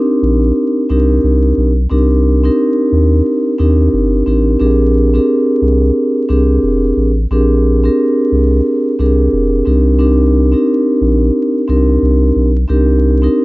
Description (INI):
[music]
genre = hip hop, boom-bap hip-hop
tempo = 89 BPM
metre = 4/4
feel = swing 57% on 16ths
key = unclear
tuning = A4 = 440 Hz
[part]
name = vibraphone with soft mallets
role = accompaniment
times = 0.0-13.4 s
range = C4 to Bb4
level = -12 LUFS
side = equal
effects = high-pass filter, low-pass filter
[part]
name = saturated sub bass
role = bass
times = 0.2-13.3 s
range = F1 to Eb2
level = -12 LUFS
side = equal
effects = none
[sound]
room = little or no reverb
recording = vinyl crackle, nothing above 7.6 kHz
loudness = -10 LUFS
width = side -20 dB against mid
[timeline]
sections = 0.0-4.6 A section; 4.6-13.4 A section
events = none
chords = 0.0 Cm9; 4.6 Bb13; 9.7 Cm9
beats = 0.56 1.24 | 1.91 2.59 3.26 3.94 | 4.61 5.28 5.96 6.63 | 7.31 7.98 8.65 9.33 | 10.00 10.68 11.35 12.03 | 12.70 13.37